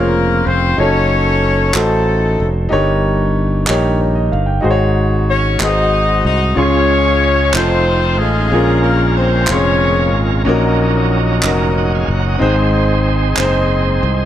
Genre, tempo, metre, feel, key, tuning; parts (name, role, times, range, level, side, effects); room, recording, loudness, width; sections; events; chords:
slow gospel; 62 BPM (dotted quarters); 6/8; straight; A4 = 440 Hz
warm horn section; melody; 0.0-10.4 s; Ab3 to Eb5; -16 LUFS; left 2 dB
warm concert grand piano; accompaniment; 0.0-14.3 s; G2 to C6; -17 LUFS; left 1 dB
fingered electric bass; bass; 0.0-14.3 s; F1 to Db2; -16 LUFS; equal
group handclap; percussion; 1.7-13.7 s; -21 LUFS; right 2 dB
bright tonewheel organ; sustained chords; 6.6-14.3 s; Gb3 to Gb5; -21 LUFS; right 4 dB; slow rotary speaker, overdrive
light reverb, small room ambience; -12 LUFS; side -11 dB against mid
0.0-14.3 A section
0.0 Dbmaj7; 0.8 Gbm6; 2.7 Eb7/G; 4.6 Ab7sus4; 5.6 Ab7; 6.6 Dbmaj7; 7.6 F7; 8.5 Bbm7; 10.5 Gb6/Bb; 12.4 Ab